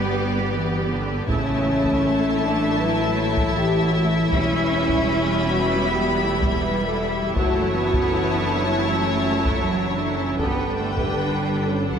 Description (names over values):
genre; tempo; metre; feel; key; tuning
cinematic, hybrid orchestral and electronic film score; 79 BPM; 4/4; straight; unclear; A4 = 439 Hz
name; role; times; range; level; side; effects
warm symphonic violin section; second line; 0.0-12.0 s; A4 to B5; -27 LUFS; left 5 dB; none
rich symphonic viola section; accompaniment; 0.0-12.0 s; D3 to G4; -26 LUFS; right 2 dB; none
dark French horn section; sustained chords; 0.0-12.0 s; B3 to B4; -25 LUFS; left 2 dB; none
hollow soft pad; sustained chords; 0.0-12.0 s; D3 to C#5; -29 LUFS; equal; chorus
rich symphonic cello section; bass; 0.0-12.0 s; C#3 to C#4; -28 LUFS; right 2 dB; none
rich symphonic double bass section; bass; 0.0-12.0 s; E1 to D2; -28 LUFS; right 2 dB; none
dark baby grand piano; texture; 0.0-12.0 s; A4 to C#6; -37 LUFS; equal; none
taiko ensemble; drums; 1.3-11.7 s; none; -27 LUFS; equal; none
room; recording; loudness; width
wet scoring stage reverb, RT60 1.9 s; none; -19 LUFS; side -7 dB against mid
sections
0.0-12.0 A section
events
none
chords
0.0 G; 1.3 A; 4.3 Em; 7.4 F#m7; 10.4 G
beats
0.52 | 1.28 2.04 2.80 3.56 | 4.32 5.08 5.84 6.60 | 7.36 8.12 8.88 9.64 | 10.40 11.16 11.92